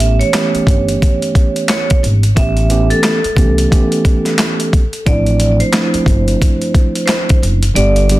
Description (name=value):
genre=hip hop, boom-bap hip-hop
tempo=89 BPM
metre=4/4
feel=swing 59% on 16ths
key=D dorian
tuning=A4 = 440 Hz
part: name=vibraphone with hard mallets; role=melody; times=0.0-8.2 s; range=A4 to E5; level=-19 LUFS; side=right 1 dB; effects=high-pass filter, low-pass filter, digital delay
part: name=mellow tine electric piano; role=accompaniment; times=0.0-8.2 s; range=D3 to G4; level=-17 LUFS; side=right 2 dB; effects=high-pass filter, low-pass filter
part: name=upright bass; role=bass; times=0.0-8.2 s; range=F#1 to C2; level=-15 LUFS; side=equal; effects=none
part: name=dusty soul sampler-style drum kit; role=drums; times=0.0-8.2 s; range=handclaps, hi-hat, kick drum, snare drum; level=-14 LUFS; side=equal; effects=none
room=little or no reverb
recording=dense, heavily limited modern master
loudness=-11 LUFS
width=side -17 dB against mid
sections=0.0-8.2 A section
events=kick muted 7.8-8.2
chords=0.0 A7; 5.1 Dm7